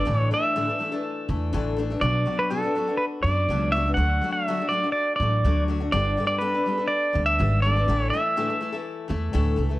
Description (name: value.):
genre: folk rock and heartland rock.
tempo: 123 BPM.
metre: 4/4.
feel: straight.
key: unclear.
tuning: A4 = 441 Hz.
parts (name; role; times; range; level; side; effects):
pedal steel guitar; melody; 0.0-8.8 s; A4 to F#5; -24 LUFS; right 1 dB; plate reverb, analog delay.
picked steel-string acoustic guitar; accompaniment; 0.0-9.8 s; A2 to A4; -28 LUFS; left 3 dB; plate reverb.
upright bass; bass; 0.1-9.8 s; G1 to F#2; -24 LUFS; equal; none.
room: moderate studio reverb, RT60 0.6 s.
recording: none.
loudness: -21 LUFS.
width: side -17 dB against mid.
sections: 0.0-9.8 A section.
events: none.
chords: 0.1 Asus4; 2.0 Bm; 4.0 D; 5.9 Gadd9; 7.9 Asus4.